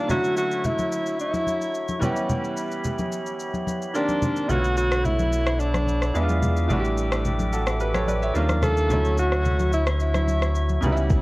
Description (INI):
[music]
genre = amapiano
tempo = 109 BPM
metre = 4/4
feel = straight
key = unclear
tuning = A4 = 436 Hz
[part]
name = clear alto saxophone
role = melody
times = 0.0-10.8 s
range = D4 to A4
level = -26 LUFS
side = equal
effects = tape echo
[part]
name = bright concert grand piano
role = accompaniment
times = 0.0-11.2 s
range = C#3 to E5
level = -28 LUFS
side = right 1 dB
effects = none
[part]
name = pipe organ, stopped flute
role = sustained chords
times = 0.0-11.2 s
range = F#4 to D6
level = -31 LUFS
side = left 1 dB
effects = sidechain pumping
[part]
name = afro-pop drum kit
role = drums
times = 0.1-11.2 s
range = kick drum, rim click, shaker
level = -29 LUFS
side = equal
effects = none
[part]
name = congas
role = percussion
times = 0.1-11.2 s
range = none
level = -29 LUFS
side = left 1 dB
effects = none
[part]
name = sub bass with octave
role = bass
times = 4.5-11.2 s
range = A1 to E2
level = -24 LUFS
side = equal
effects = none
[sound]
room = light reverb, studio reverb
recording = worn, warbling old tape, cassette tape, warbly pitch drift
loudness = -21 LUFS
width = side -20 dB against mid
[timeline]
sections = 0.0-11.2 A section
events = none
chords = 0.1 Dmaj9; 2.0 C#m7b5; 3.9 Cm9; 4.5 Bm9; 6.2 E7b9; 6.7 A7sus4; 8.4 D#maj9; 8.9 Dmaj9